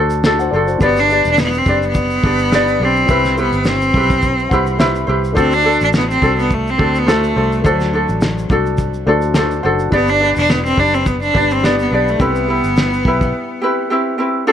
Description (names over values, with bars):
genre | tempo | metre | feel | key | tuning
acoustic pop | 105 BPM | 4/4 | swing 55% on 16ths | unclear | A4 = 442 Hz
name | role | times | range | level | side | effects
dark upright piano | accompaniment | 0.0-14.5 s | G3 to C6 | -25 LUFS | left 4 dB | none
ukulele | accompaniment | 0.0-14.5 s | C4 to D5 | -17 LUFS | left 1 dB | none
vintage muted fingered electric bass | bass | 0.0-13.3 s | E1 to D2 | -20 LUFS | equal | none
cloth-damped thuddy drum kit | drums | 0.1-13.3 s | kick drum, shaker, snare drum | -18 LUFS | equal | none
clear cello | melody | 0.8-14.5 s | F#3 to D4 | -16 LUFS | right 1 dB | ping-pong delay
room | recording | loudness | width
small room ambience | none | -12 LUFS | side -9 dB against mid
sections
0.0-14.5 A section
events
upright piano fill 4.2-5.4, 8.8-9.9; break 13.3-14.5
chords
0.0 D7; 0.8 G; 3.1 Cmaj7; 5.4 D7; 9.9 G; 12.2 Cmaj7